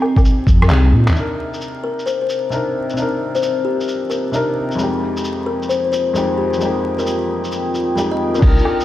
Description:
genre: future garage.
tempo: 132 BPM.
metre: 4/4.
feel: swing 67% on 16ths.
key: C minor.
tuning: A4 = 440 Hz.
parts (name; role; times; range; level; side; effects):
felt-muted upright piano; accompaniment; 0.0-8.8 s; F2 to Bb4; -22 LUFS; left 1 dB; sidechain pumping, tape echo.
dark analog pad; sustained chords; 0.0-8.8 s; C4 to Eb6; -23 LUFS; right 1 dB; chorus, phaser, sidechain pumping.
lo-fi sampler-style drum kit; drums; 0.0-8.8 s; crash cymbal, handclaps, rim click, shaker, woodblock; -27 LUFS; equal; none.
electronic kick drum; drums; 0.2-0.6, 8.4-8.5 s; none; -12 LUFS; equal; none.
dark detuned saw bass; bass; 0.5-1.1, 8.4-8.6 s; C2 to Bb2; -13 LUFS; equal; tube saturation, sidechain pumping.
kalimba; melody; 1.8-8.4 s; G4 to Eb5; -21 LUFS; left 5 dB; analog delay.
room: light reverb, digital ambience.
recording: played on a big sound system in a bare room, stone room reverb, vinyl crackle.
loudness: -15 LUFS.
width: side -13 dB against mid.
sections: 0.0-1.2 A section; 1.2-8.4 B section.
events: kick drops out 0.7-1.2; drum fill 0.7-1.2; filter sweep on analog synth pad 1.2-8.4.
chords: 0.0 Fm7; 1.2 Cm7; 4.8 Fm7.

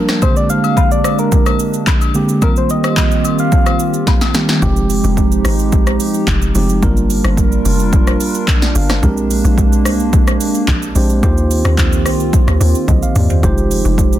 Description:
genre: amapiano.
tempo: 109 BPM.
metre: 4/4.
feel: straight.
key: F dorian.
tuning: A4 = 441 Hz.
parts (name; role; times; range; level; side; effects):
mellow tine electric piano; accompaniment; 0.0-14.2 s; C3 to F5; -18 LUFS; moving between right 2 dB and right 11 dB; auto-pan.
hollow soft pad; sustained chords; 0.0-14.2 s; Eb3 to Bb4; -21 LUFS; left 2 dB; chorus, sidechain pumping.
deep house drum kit; drums; 0.1-14.2 s; handclaps, hi-hat, kick drum, rim click, shaker, snare drum, toms; -14 LUFS; equal; none.
soft struck synth lead; melody; 0.2-4.2 s; Bb4 to F5; -20 LUFS; left 2 dB; chorus, ping-pong delay.
agogo bells and woodblock; percussion; 0.2-4.3 s; none; -25 LUFS; left 13 dB; none.
hollow log drum bass; bass; 4.6-14.2 s; F1 to Eb2; -16 LUFS; equal; none.
room: digital ambience.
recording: dense, heavily limited modern master.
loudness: -11 LUFS.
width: side -12 dB against mid.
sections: 0.0-4.6 A section; 4.6-14.2 B section.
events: drum fill 4.1-4.6, 12.9-13.4; drop 4.6-14.2.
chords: 0.2 Bb13; 2.4 Eb69; 4.6 Fm9; 6.8 Gm7; 9.0 Bb13; 11.2 Eb69; 13.4 Fm9.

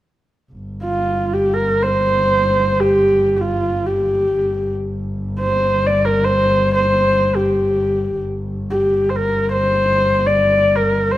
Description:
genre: mongolian traditional.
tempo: free time.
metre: none.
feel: none.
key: G yu mode.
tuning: A4 = 440 Hz.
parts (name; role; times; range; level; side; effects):
rich double bass; drone; 0.5-11.2 s; G1; -21 LUFS; equal; none.
dark horsehead fiddle; melody; 0.8-11.2 s; F4 to D5; -16 LUFS; equal; none.
room: moderate recital hall reverb, RT60 1.6 s.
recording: none.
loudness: -15 LUFS.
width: side -14 dB against mid.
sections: 0.5-11.2 A section.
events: none.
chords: none.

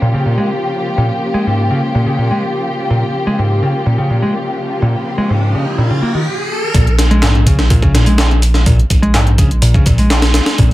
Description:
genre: breakbeat, breaks.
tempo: 125 BPM.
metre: 4/4.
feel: straight.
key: Bb dorian.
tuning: A4 = 440 Hz.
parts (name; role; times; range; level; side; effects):
dark studio string section; sustained chords; 0.0-6.2 s; Db3 to G4; -18 LUFS; left 1 dB; sidechain pumping.
modern bright picked electric bass; riff; 0.0-10.7 s; Ab2 to Bb3; -14 LUFS; equal; tube saturation, low-pass filter.
riser; sound effects; 4.4-6.7 s; none; -22 LUFS; equal; none.
saturated sub bass; bass; 6.7-10.7 s; Bb1; -13 LUFS; equal; none.
breakbeat sampler-style drum kit; drums; 6.7-10.7 s; hi-hat, kick drum, snare drum; -13 LUFS; equal; none.
punchy analog drum machine; drums; 6.7-10.7 s; handclaps, hi-hat; -21 LUFS; equal; none.
room: light reverb.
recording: none.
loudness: -11 LUFS.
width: side -16 dB against mid.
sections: 0.0-6.7 A section; 6.7-10.7 B section.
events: riser 4.4-6.7; stop 6.3-6.7; drop 6.7-10.7.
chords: 0.0 Bbm; 6.7 N.C..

